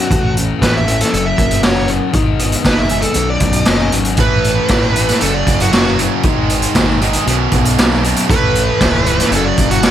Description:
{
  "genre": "quiet-loud alternative rock",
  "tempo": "117 BPM",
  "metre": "4/4",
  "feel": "straight",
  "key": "B major",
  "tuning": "A4 = 440 Hz",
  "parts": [
    { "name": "dark smooth lead guitar", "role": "melody", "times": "0.0-9.9 s", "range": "F#4 to E5", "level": "-18 LUFS", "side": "right 1 dB", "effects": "overdrive" },
    { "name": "electric guitar through a small old amp", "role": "arpeggios", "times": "0.0-4.2 s", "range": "B1 to A4", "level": "-24 LUFS", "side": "right 4 dB", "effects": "analog chorus, digital delay" },
    { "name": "thick fuzz guitar", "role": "riff", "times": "0.0-9.9 s", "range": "B1 to A3", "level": "-19 LUFS", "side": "left 10 dB", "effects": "distortion" },
    { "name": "growling picked electric bass", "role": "bass", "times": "0.1-9.9 s", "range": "C#1 to B1", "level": "-19 LUFS", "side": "equal", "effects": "overdrive" },
    { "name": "raw garage drum kit", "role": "drums", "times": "0.1-9.9 s", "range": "hi-hat, kick drum, snare drum", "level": "-15 LUFS", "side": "equal", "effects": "none" },
    { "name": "distorted electric guitar", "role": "riff", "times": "4.2-9.9 s", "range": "B1 to A3", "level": "-19 LUFS", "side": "right 18 dB", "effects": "overdrive" }
  ],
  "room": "little or no reverb",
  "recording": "none",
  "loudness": "-11 LUFS",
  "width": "side -10 dB against mid",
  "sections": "0.0-9.9 A section",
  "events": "lead electric guitar solo 0.0-9.9",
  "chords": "0.1 A; 1.1 F#; 2.1 G#m; 3.2 Bsus2; 4.2 Asus2; 5.2 F#5; 6.2 G#5; 7.3 B5; 8.3 Aadd9; 9.3 F#5"
}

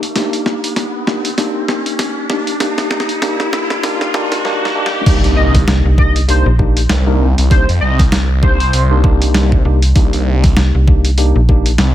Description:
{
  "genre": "glitch hop",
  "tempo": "98 BPM",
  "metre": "4/4",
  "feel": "swing 58% on 16ths",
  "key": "C minor",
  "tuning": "A4 = 440 Hz",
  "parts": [
    { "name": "boom bap sampler-style drum kit", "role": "drums", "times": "0.0-11.9 s", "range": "crash cymbal, hi-hat, snare drum", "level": "-19 LUFS", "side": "equal", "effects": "none" },
    { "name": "riser and impact", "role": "sound effects", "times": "0.0-7.5 s", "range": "none", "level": "-22 LUFS", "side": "equal", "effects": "none" },
    { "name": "tine electric piano", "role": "stabs", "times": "0.2-11.7 s", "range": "Bb3 to Bb4", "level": "-19 LUFS", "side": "left 1 dB", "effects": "overdrive, fast stereo tremolo, sidechain pumping, low-pass filter, ping-pong delay" },
    { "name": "phased detuned saw bass", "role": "bass", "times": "5.1-11.9 s", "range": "C2 to F2", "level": "-13 LUFS", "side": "equal", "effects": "phaser" },
    { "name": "electronic kick drum", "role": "drums", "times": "5.1-11.6 s", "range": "none", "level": "-12 LUFS", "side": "equal", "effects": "overdrive" },
    { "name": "sync lead", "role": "melody", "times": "5.4-9.0 s", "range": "C5 to Eb5", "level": "-20 LUFS", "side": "equal", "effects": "analog chorus, ping-pong delay" },
    { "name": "slap-like FM bass", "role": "bass", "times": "5.7-11.8 s", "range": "Bb1 to C2", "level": "-12 LUFS", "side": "equal", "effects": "none" }
  ],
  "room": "digital ambience",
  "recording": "high-pass filter",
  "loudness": "-11 LUFS",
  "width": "side -12 dB against mid",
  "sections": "0.0-5.1 A section; 5.1-11.9 B section",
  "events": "build-up 0.0-5.1; drum fill 0.0-4.4, 4.4-5.1; riser 0.0-5.1; filter sweep on tine electric piano 0.0-5.1; drop 5.1-11.9; impact 5.1-7.5",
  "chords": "0.0 Ebmaj7/Bb; 5.1 Cm9"
}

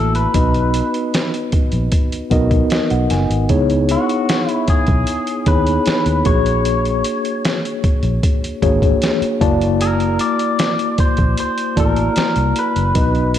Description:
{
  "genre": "lush 1970s-style soul",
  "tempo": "76 BPM",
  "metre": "4/4",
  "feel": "straight",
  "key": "unclear",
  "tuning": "A4 = 439 Hz",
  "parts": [
    { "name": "electric guitar through a small old amp", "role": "melody", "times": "0.0-13.4 s", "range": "F#4 to D5", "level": "-21 LUFS", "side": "left 2 dB", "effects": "spring reverb, tape echo" },
    { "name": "mellow tine electric piano", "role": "accompaniment", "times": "0.0-13.4 s", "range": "A#3 to A5", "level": "-19 LUFS", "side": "left 1 dB", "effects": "medium stereo tremolo" },
    { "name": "vintage muted fingered electric bass", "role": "bass", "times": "0.0-13.4 s", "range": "F#1 to D#2", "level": "-19 LUFS", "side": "equal", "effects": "none" },
    { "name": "trip hop sampler-style drum kit", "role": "drums", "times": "0.1-13.4 s", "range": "hi-hat, kick drum, snare drum", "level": "-18 LUFS", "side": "equal", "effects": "none" }
  ],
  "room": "light reverb, digital ambience",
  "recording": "dark, warm production",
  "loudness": "-14 LUFS",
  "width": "side -10 dB against mid",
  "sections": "0.0-13.4 A section",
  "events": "tine electric piano fill 2.3-3.5",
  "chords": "0.3 Bmaj7; 3.5 C#m9; 6.3 A#7alt; 9.4 F#7alt"
}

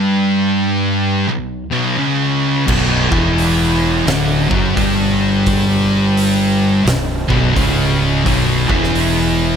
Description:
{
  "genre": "stoner and doom metal",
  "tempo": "86 BPM",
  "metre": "4/4",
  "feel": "swing 62% on 8ths",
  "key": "B minor",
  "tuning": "A4 = 441 Hz",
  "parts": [
    { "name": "heavy high-gain guitar", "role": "riff", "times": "0.0-9.6 s", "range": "B1 to G3", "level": "-21 LUFS", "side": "right 1 dB", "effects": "distortion" },
    { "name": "thick fuzz guitar", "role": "riff", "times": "0.0-9.6 s", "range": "B1 to G3", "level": "-18 LUFS", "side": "left 8 dB", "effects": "distortion" },
    { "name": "thick fuzz guitar", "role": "riff", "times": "0.0-9.6 s", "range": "B1 to G3", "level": "-18 LUFS", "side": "right 8 dB", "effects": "distortion" },
    { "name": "fuzz fingered electric bass", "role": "bass", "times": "2.7-9.6 s", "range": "B0 to G1", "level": "-20 LUFS", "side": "equal", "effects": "overdrive" },
    { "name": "oversized low-tuned drum kit", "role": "drums", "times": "2.7-9.2 s", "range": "crash cymbal, hi-hat, kick drum, snare drum", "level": "-20 LUFS", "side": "equal", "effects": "none" }
  ],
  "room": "light reverb, studio ambience",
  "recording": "none",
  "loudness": "-13 LUFS",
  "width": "side -7 dB against mid",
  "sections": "0.0-9.6 A section",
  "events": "none",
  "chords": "0.0 Bm"
}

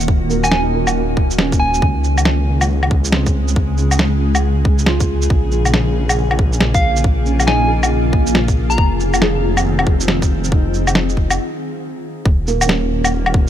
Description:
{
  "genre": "future garage",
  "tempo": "138 BPM",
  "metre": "4/4",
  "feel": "swing 63% on 16ths",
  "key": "Eb dorian",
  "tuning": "A4 = 440 Hz",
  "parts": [
    { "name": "felt-muted upright piano", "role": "accompaniment", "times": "0.0-13.5 s", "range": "Eb3 to Ab4", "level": "-26 LUFS", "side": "right 4 dB", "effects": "sidechain pumping, tape echo" },
    { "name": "granular cloud pad", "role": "sustained chords", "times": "0.0-13.5 s", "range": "Db3 to Ab4", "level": "-22 LUFS", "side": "left 1 dB", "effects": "built-in reverb, sidechain pumping" },
    { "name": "swelling detuned saw bass", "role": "bass", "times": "0.0-13.5 s", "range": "Eb1 to Db2", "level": "-18 LUFS", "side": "equal", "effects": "sidechain pumping" },
    { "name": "electronic shaker, woodblock and snare drum", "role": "drums", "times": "0.0-13.3 s", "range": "none", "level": "-19 LUFS", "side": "equal", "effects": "overdrive" },
    { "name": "electronic kick drum", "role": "drums", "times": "0.1-13.5 s", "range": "none", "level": "-15 LUFS", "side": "equal", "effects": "none" },
    { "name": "soft struck synth lead", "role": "melody", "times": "0.4-1.9, 6.7-8.8 s", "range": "F5 to Bb5", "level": "-22 LUFS", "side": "right 1 dB", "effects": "chorus, tape echo" }
  ],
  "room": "light reverb",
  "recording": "none",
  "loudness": "-13 LUFS",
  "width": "side -10 dB against mid",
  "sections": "0.0-12.3 A section; 12.3-13.5 B section",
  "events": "break 11.4-12.3",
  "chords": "0.0 Ebmadd9; 1.8 Db; 5.3 Bbm7; 8.8 Fm7; 12.3 Eb5"
}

